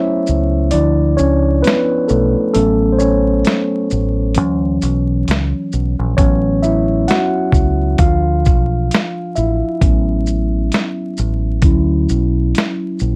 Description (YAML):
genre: lo-fi hip hop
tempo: 66 BPM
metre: 4/4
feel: swing 56% on 16ths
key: A major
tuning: A4 = 441 Hz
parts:
  - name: mellow tine electric piano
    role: accompaniment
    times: 0.0-13.2 s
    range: E3 to F#5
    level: -19 LUFS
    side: equal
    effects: cassette tape, low-pass filter
  - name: deep dub fingered electric bass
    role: bass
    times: 0.3-13.2 s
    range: A1 to D2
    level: -19 LUFS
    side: equal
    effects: none
  - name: dusty soul sampler-style drum kit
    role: drums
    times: 0.3-13.2 s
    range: hi-hat, kick drum, shaker, snare drum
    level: -18 LUFS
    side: equal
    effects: none
room: light reverb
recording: vinyl crackle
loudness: -15 LUFS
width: mono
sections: 0.0-13.2 A section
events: break 0.0-6.2; tine electric piano solo 0.0-13.2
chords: 0.0 A6 (rootless); 0.7 Dmadd9; 2.5 A6; 4.4 Dmaj9; 6.2 A6; 8.0 Dmadd9; 9.8 A6; 11.6 Dmaj9